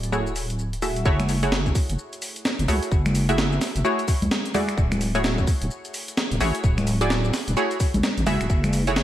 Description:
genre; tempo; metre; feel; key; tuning
UK garage, two-step garage; 129 BPM; 4/4; swing 61% on 16ths; F# minor; A4 = 440 Hz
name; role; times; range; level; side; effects
punchy chord stab; stabs; 0.0-9.0 s; A3 to E5; -26 LUFS; equal; chorus, ping-pong delay
deep soft wobble bass; bass; 0.0-9.0 s; D1 to C#2; -24 LUFS; equal; chorus
breakbeat sampler-style drum kit; drums; 0.0-9.0 s; congas, finger snaps, hi-hat, shaker, snare drum; -26 LUFS; equal; studio reverb, gated reverb
electronic kick drum; drums; 1.1-8.6 s; none; -21 LUFS; equal; studio reverb
room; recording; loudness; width
light reverb, digital ambience; bright 1980s-style digital production, vinyl crackle; -20 LUFS; side -12 dB against mid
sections
0.0-1.1 A section; 1.1-9.0 B section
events
drop 1.1-9.0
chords
0.0 Dmaj9#11; 1.1 F#m9; 4.5 Dmaj9#11; 8.5 F#m9

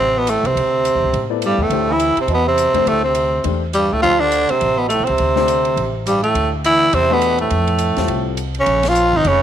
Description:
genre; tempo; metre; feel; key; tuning
modal jazz; 207 BPM; 4/4; swing 59% on 8ths; D dorian; A4 = 440 Hz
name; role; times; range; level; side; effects
growling tenor saxophone; melody; 0.0-9.4 s; G3 to F4; -16 LUFS; equal; none
clear bass clarinet; second line; 0.0-9.4 s; G2 to F3; -23 LUFS; right 10 dB; tape echo
upright bass; bass; 0.0-9.4 s; F1 to A2; -23 LUFS; equal; none
compact cocktail drum kit; drums; 0.3-9.3 s; hi-hat, ride cymbal, snare drum; -31 LUFS; right 3 dB; none
warm baby grand piano; accompaniment; 1.3-8.4 s; G3 to D5; -24 LUFS; left 13 dB; none
room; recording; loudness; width
moderate plate reverb, RT60 1.5 s; 1960s-style stereo with parts hard left and right; -14 LUFS; side -10 dB against mid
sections
0.0-8.7 A section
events
band accent 8.8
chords
0.0 Dsus2; 1.7 Am7/D; 4.0 D5; 6.4 A5/D; 7.5 F; 8.7 Bbm7

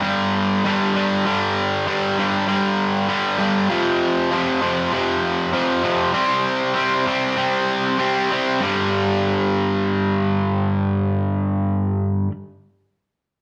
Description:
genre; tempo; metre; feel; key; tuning
rock; 98 BPM; 4/4; straight; unclear; A4 = 439 Hz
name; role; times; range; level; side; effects
cranked stack guitar; solo; 0.0-12.3 s; F2 to C4; -20 LUFS; equal; overdrive
room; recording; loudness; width
wet stone room reverb, RT60 0.9 s; band playing live in one room; -20 LUFS; mono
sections
0.0-8.6 A section; 8.6-11.1 B section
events
none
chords
0.0 G5; 3.7 F5; 6.1 C5; 8.6 G5

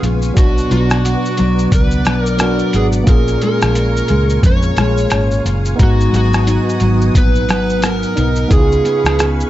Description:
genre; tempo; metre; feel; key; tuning
indie pop, bedroom pop; 88 BPM; 4/4; swing 60% on 16ths; unclear; A4 = 439 Hz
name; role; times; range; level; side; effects
barky tine electric piano; accompaniment; 0.0-9.5 s; F#3 to A#5; -21 LUFS; right 3 dB; overdrive
nylon-string guitar; accompaniment; 0.0-9.5 s; G#2 to G#4; -18 LUFS; left 1 dB; ensemble chorus, warbly pitch drift
string machine, violins; sustained chords; 0.0-9.5 s; B3 to D#6; -25 LUFS; equal; ensemble chorus
vintage muted fingered electric bass; bass; 0.0-9.4 s; F#1 to E#2; -17 LUFS; equal; none
lo-fi sampler-style drum kit; drums; 0.0-9.5 s; hi-hat, kick drum, rim click, shaker; -15 LUFS; equal; none
overdriven slide guitar; melody; 0.4-9.2 s; F#4 to C#5; -20 LUFS; equal; wide subtle chorus, slapback echo
room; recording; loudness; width
light reverb; dark, warm production, nothing above 7.9 kHz; -11 LUFS; side -14 dB against mid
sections
0.0-9.5 A section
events
none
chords
0.4 Bm; 3.1 A#m7; 5.8 G#m7; 8.5 C#7

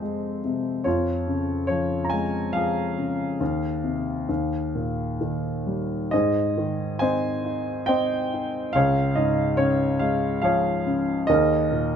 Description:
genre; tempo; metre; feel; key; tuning
classical, lyrical solo piano; 64-72 BPM; 3/4; rubato; Ab major; A4 = 437 Hz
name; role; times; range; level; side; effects
warm grand piano; solo; 0.0-12.0 s; Db2 to Bb5; -22 LUFS; equal; none
room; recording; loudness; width
light reverb; minimal, uncompressed stereo recording; -22 LUFS; side -8 dB against mid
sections
0.0-6.1 A section; 6.1-12.0 B section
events
none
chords
0.0 Fm; 0.9 Db/F; 3.4 Ab/Eb; 4.3 Eb; 6.1 Ab; 8.7 Db; 11.3 Ebsus4

